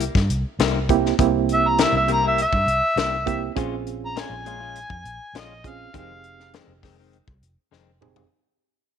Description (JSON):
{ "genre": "straight-eighth soul blues", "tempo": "101 BPM", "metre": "4/4", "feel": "straight", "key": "F minor", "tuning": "A4 = 440 Hz", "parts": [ { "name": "direct-recorded clean electric guitar", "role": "stabs", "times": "0.0-7.9 s", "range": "F2 to F4", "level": "-29 LUFS", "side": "left 11 dB", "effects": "none" }, { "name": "vintage muted fingered electric bass", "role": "bass", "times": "0.0-8.2 s", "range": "F1 to G2", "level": "-27 LUFS", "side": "equal", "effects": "none" }, { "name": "tight funk drum kit", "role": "drums", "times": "0.0-8.3 s", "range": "hi-hat, kick drum, snare drum, toms", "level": "-24 LUFS", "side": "left 3 dB", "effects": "none" }, { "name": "reed electric piano", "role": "accompaniment", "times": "0.9-8.3 s", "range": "Bb3 to Ab4", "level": "-23 LUFS", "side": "right 16 dB", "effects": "fast tremolo" }, { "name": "mellow harmonica", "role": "melody", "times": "1.5-6.5 s", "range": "Eb5 to Bb5", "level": "-23 LUFS", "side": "equal", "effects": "none" } ], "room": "light reverb, studio reverb", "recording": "1960s-style stereo with parts hard left and right", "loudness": "-18 LUFS", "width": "side -8 dB against mid", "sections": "0.0-8.3 A section", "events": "fade-out 0.0-8.3; drum fill 7.7-8.3", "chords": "0.0 C7; 3.6 Bbm7; 5.9 Fm7", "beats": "0.00 0.60 | 1.19 1.78 2.38 2.97 | 3.57 4.16 4.75 5.35 | 5.94 6.54 7.13 7.72" }